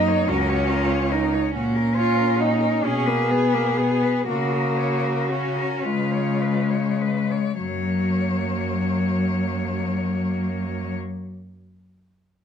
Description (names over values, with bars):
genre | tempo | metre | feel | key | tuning
classical, lyrical piece for cello ensemble | 32-48 BPM (dotted quarters) | 6/8 | rubato | F# major | A4 = 441 Hz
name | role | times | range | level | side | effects
clear cello | melody | 0.0-10.9 s | F#4 to C#5 | -30 LUFS | left 7 dB | none
rich cello | second line | 0.0-10.9 s | A#3 to G#4 | -27 LUFS | right 4 dB | none
rich cello | accompaniment | 0.0-10.9 s | F#3 to E#4 | -24 LUFS | left 3 dB | none
rich cello | bass | 0.0-10.9 s | C#2 to C#3 | -25 LUFS | right 1 dB | none
room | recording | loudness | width
light reverb | dark, warm production | -20 LUFS | side -8 dB against mid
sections
0.0-7.6 A section; 7.6-11.0 B section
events
slowing down 0.3-7.6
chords
0.0 F#; 1.5 F#/A#; 2.8 G#m/B; 4.3 F#/C#; 5.8 C#7; 7.6 F#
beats
0.28 | 1.54 2.84 | 4.27 5.84 | 7.61 9.30